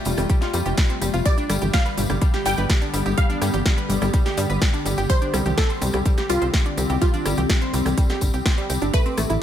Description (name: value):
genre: progressive house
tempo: 125 BPM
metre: 4/4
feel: straight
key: unclear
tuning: A4 = 440 Hz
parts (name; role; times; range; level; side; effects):
- wide unison pluck; melody; 0.0-9.4 s; F4 to G5; -28 LUFS; equal; sidechain pumping, ping-pong delay
- evolving wavetable pad; sustained chords; 0.0-9.4 s; C3 to G4; -28 LUFS; left 1 dB; chorus, built-in reverb, sidechain pumping
- analog pluck; arpeggios; 0.1-9.3 s; G3 to C6; -27 LUFS; equal; chorus, sidechain pumping, ping-pong delay
- tight sequencer bass; bass; 0.1-9.4 s; F1 to G2; -24 LUFS; equal; sidechain pumping
- big-room dance drum kit; drums; 0.1-9.4 s; hi-hat, rim click, snare drum; -28 LUFS; equal; none
- congas and bongos; percussion; 0.1-9.4 s; none; -32 LUFS; right 3 dB; none
- tambourine; percussion; 0.1-9.4 s; none; -36 LUFS; left 4 dB; none
- electronic kick drum; drums; 0.3-9.0 s; none; -20 LUFS; equal; none
- twinkling granular texture; texture; 9.1-9.4 s; D6; -42 LUFS; left 4 dB; none
room: digital ambience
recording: none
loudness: -18 LUFS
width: side -10 dB against mid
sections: 0.0-9.4 A section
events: none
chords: 0.0 Fadd9; 1.3 G; 5.1 Csus2